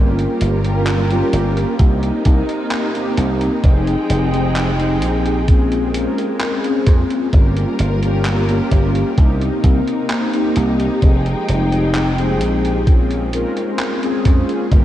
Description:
vaporwave; 65 BPM; 4/4; straight; F minor; A4 = 440 Hz
mellow synth brass; accompaniment; 0.0-14.8 s; Bb3 to Bb4; -19 LUFS; left 1 dB; lush chorus, analog delay
warm studio string section; sustained chords; 0.0-14.8 s; C3 to G5; -24 LUFS; equal
dry thumbed slap bass; bass; 0.0-14.8 s; F1 to F2; -18 LUFS; equal
gated 80s digital drum machine; drums; 0.2-14.8 s; handclaps, hi-hat; -28 LUFS; equal; gated reverb
electronic kick drum; drums; 1.8-14.8 s; -12 LUFS; equal
moderate huge ambient reverb, RT60 7.1 s; dreamy mix soaked in reverb, cassette tape; -14 LUFS; side -12 dB against mid
0.0-14.8 A section
0.0 Gm7b5; 1.8 Cm7; 3.6 Fm9; 5.5 Bbm9; 7.3 Gm7b5; 9.2 Cm7; 11.0 Fm9; 12.9 Bbm9
0.87 1.79 2.72 | 3.64 4.56 5.49 6.41 | 7.33 8.26 9.18 10.10 | 11.02 11.95 12.87 13.79 | 14.72

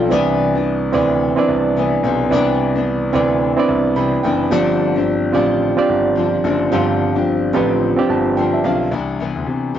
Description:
indie pop, bedroom pop; 109 BPM; 4/4; swing 60% on 16ths; C major; A4 = 440 Hz
nylon-string guitar; accompaniment; 0.0-9.8 s; G2 to A4; -19 LUFS; left 7 dB; lush chorus, warbly pitch drift
reed electric piano; accompaniment; 0.0-8.9 s; B3 to B5; -17 LUFS; right 5 dB
warm concert grand piano; bass; 0.0-9.8 s; F#1 to C3; -23 LUFS; left 1 dB
wet booth ambience, RT60 0.2 s; home recording on cassette, nothing above 7.6 kHz; -14 LUFS; side -10 dB against mid
0.0-8.9 A section
reed electric piano fill 3.7-4.5, 7.8-8.9
0.1 Cmaj9; 4.5 G7sus4; 8.9 Cmaj9
| 0.11 0.66 1.21 1.76 | 2.31 2.86 3.42 3.96 | 4.52 5.07 5.62 6.17 | 6.72 7.27 7.82 8.37 | 8.92 9.47

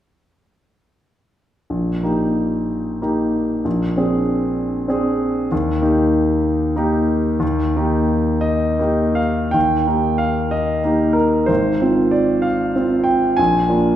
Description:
classical, romantic character piece for solo piano; 52-66 BPM (dotted quarters); 6/8; rubato; Eb major; A4 = 440 Hz
clear concert grand piano; solo; 1.7-14.0 s; Ab1 to Ab5; -16 LUFS; equal
wet recital hall reverb, RT60 1.6 s; heard from further back in the room; -16 LUFS; side -11 dB against mid
1.7-9.6 A section; 9.6-14.0 B section
1.7 Eb/Bb; 3.7 Bb9; 5.5 Eb; 11.5 Fm/Ab; 13.4 Bb7
| 1.71 2.71 | 3.66 4.59 | 5.51 6.46 | 7.42 8.44 | 9.55 10.54 | 11.49 12.45 | 13.38

